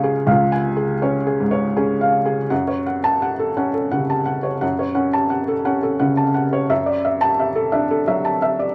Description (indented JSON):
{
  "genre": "neoclassical minimalist piano",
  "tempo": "79-88 BPM",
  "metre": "3/4",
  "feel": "rubato",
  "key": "F# minor",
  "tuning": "A4 = 442 Hz",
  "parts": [
    { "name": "felt-muted upright piano", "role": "solo", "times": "0.0-8.7 s", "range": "C#2 to A5", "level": "-20 LUFS", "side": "equal", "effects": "none" }
  ],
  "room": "moderate club reverb, RT60 0.8 s",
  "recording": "vinyl crackle",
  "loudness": "-19 LUFS",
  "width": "mono",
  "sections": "0.0-2.5 A section; 2.5-8.7 B section",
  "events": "none",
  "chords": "0.0 C#; 2.5 F#m; 6.7 Dadd9/F#",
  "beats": "| 0.27 1.02 1.77 | 2.51 3.22 3.92 | 4.62 5.32 6.02 | 6.70 7.39 8.08"
}